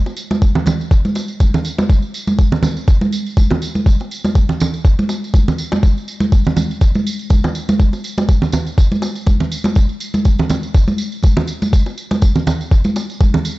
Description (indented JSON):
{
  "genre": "nu-disco",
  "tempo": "122 BPM",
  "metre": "4/4",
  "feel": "swing 55% on 16ths",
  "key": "none",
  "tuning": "none",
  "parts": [
    { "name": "tambourine, bongos and congas", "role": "percussion", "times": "0.1-13.6 s", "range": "none", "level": "-17 LUFS", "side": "right 1 dB", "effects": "none" },
    { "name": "electronic kick drum", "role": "drums", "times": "0.4-13.3 s", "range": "none", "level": "-11 LUFS", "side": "equal", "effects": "none" }
  ],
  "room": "little or no reverb",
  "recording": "nothing above 7.7 kHz",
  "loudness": "-13 LUFS",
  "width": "side -19 dB against mid",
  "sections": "0.0-13.6 A section",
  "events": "none",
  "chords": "none"
}